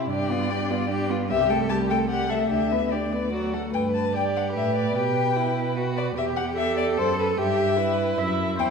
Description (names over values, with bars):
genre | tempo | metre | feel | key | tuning
quick classical-period movement for string quartet | 149 BPM | 3/4 | straight | G major | A4 = 442 Hz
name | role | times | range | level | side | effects
clear violin | second line | 0.0-8.7 s | E4 to B4 | -30 LUFS | left 1 dB | none
rich viola | accompaniment | 0.0-8.7 s | F#3 to E5 | -27 LUFS | right 2 dB | none
rich cello | bass | 0.0-8.7 s | C2 to B2 | -28 LUFS | right 3 dB | none
rich violin | melody | 0.1-8.7 s | B4 to A5 | -27 LUFS | left 7 dB | none
room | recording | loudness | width
wet recital hall reverb, RT60 1.5 s | heard from further back in the room | -22 LUFS | side -5 dB against mid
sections
0.0-3.7 A section; 3.7-8.7 B section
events
none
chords
0.1 G7; 1.3 Am7/C; 2.5 G/D; 3.3 D; 3.7 G; 5.0 G/B; 6.2 Em; 7.4 Em/G